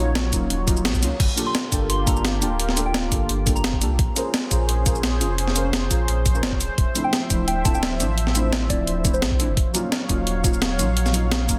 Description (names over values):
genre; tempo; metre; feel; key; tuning
liquid drum and bass; 172 BPM; 4/4; straight; unclear; A4 = 440 Hz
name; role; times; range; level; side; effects
deep mellow chord stab; accompaniment; 0.0-11.6 s; F3 to Db5; -30 LUFS; equal; chorus, phaser, dub echo
warm analog pad; sustained chords; 0.0-11.6 s; F3 to F5; -32 LUFS; equal; chorus, sidechain pumping
warm sub bass; bass; 0.0-11.6 s; D1 to D2; -27 LUFS; equal; none
breakbeat sampler-style drum kit; drums; 0.2-11.6 s; crash cymbal, hi-hat, shaker, snare drum; -27 LUFS; equal; none
electronic kick drum; drums; 0.3-11.6 s; none; -25 LUFS; equal; none
soft synth bell; melody; 1.5-4.0, 7.0-9.5 s; C5 to C6; -32 LUFS; equal; chorus, phaser, digital delay
room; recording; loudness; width
light reverb, digital ambience; dense, heavily limited modern master; -21 LUFS; mono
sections
0.0-1.2 A section; 1.2-11.6 A section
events
drop 0.0-1.2, 1.2-11.6; band accent 0.8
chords
0.0 Ebm9; 1.2 Gm9; 4.0 Bbm9; 6.6 Dm9; 9.6 Ebm9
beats
0.15 0.50 0.85 | 1.20 1.55 1.90 2.25 | 2.59 2.94 3.29 3.64 | 3.99 4.34 4.69 5.04 | 5.38 5.73 6.08 6.43 | 6.78 7.13 7.48 7.83 | 8.18 8.52 8.87 9.22 | 9.57 9.92 10.27 10.62 | 10.97 11.31